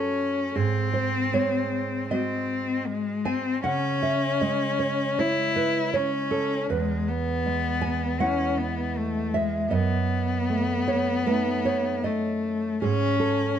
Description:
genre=romantic duo for cello and classical guitar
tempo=78 BPM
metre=4/4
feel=rubato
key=C# minor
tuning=A4 = 440 Hz
part: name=rich cello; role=melody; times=0.0-13.6 s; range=G#3 to E4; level=-26 LUFS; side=left 4 dB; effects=none
part: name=nylon-string guitar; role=accompaniment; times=0.0-13.6 s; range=E2 to G#5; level=-26 LUFS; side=right 4 dB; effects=none
room=moderate recital hall reverb, RT60 1.7 s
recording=close, detailed microphones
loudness=-23 LUFS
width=side -9 dB against mid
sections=0.0-13.6 A section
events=none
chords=0.0 F#m; 0.6 G#7; 3.6 C#m; 6.7 E; 9.7 D#dim/F#; 12.8 N.C.

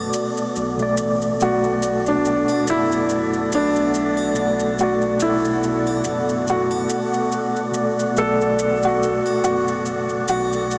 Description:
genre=trip hop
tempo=71 BPM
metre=4/4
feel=swing 57% on 16ths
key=B minor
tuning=A4 = 440 Hz
part: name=mellow tine electric piano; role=accompaniment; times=0.0-10.8 s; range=B2 to D5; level=-26 LUFS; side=equal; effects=tremolo, tape echo
part: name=deep dark ambient pad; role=sustained chords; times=0.0-10.8 s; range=B3 to F#5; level=-28 LUFS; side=equal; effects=chorus, built-in reverb
part: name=round analog bass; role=bass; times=0.0-10.8 s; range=F#1 to B1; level=-36 LUFS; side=equal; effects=none
part: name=wind-like tuned noise texture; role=texture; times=0.0-10.8 s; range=D5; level=-34 LUFS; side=equal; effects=built-in reverb
part: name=maracas and triangle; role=percussion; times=0.1-10.8 s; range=none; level=-36 LUFS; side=equal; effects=none
part: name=felt-muted upright piano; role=melody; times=1.4-10.8 s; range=D4 to A4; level=-23 LUFS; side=equal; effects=vintage 12-bit sampler grit, tape echo
room=wet huge ambient reverb, RT60 7.9 s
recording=dreamy mix soaked in reverb, vinyl crackle, small speaker sound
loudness=-20 LUFS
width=mono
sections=0.0-10.8 A section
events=none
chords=0.0 Bm7

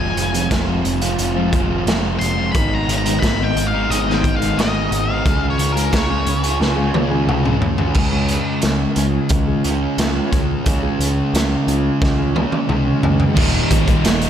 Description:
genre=quiet-loud alternative rock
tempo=89 BPM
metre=4/4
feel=straight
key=unclear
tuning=A4 = 442 Hz
part: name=octave-fuzz lead guitar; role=melody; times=0.0-6.6 s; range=Bb4 to C6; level=-24 LUFS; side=left 2 dB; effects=distortion, analog delay
part: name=mellow electric guitar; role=arpeggios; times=0.0-13.1 s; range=Eb3 to Ab4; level=-26 LUFS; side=left 1 dB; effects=analog chorus
part: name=fuzz guitar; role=riff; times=0.0-14.3 s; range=Eb2 to Ab4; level=-20 LUFS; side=right 1 dB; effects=distortion
part: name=growling picked electric bass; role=bass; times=0.0-14.3 s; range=Eb1 to Db2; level=-23 LUFS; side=equal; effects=overdrive
part: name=raw garage drum kit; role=drums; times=0.2-14.3 s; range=crash cymbal, hi-hat, kick drum, snare drum, toms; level=-20 LUFS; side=equal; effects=none
part: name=fuzz guitar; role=riff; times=13.4-14.3 s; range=Eb2 to Eb3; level=-20 LUFS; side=equal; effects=distortion
room=moderate recital hall reverb, RT60 1.7 s, small room reverb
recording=big arena sound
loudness=-15 LUFS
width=side -9 dB against mid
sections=0.0-8.0 A section; 8.0-13.4 B section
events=lead electric guitar solo 0.0-8.0; drum fill 6.6-8.0, 12.0-13.4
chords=0.0 Fm; 2.5 Abm; 5.3 Db; 13.4 Eb

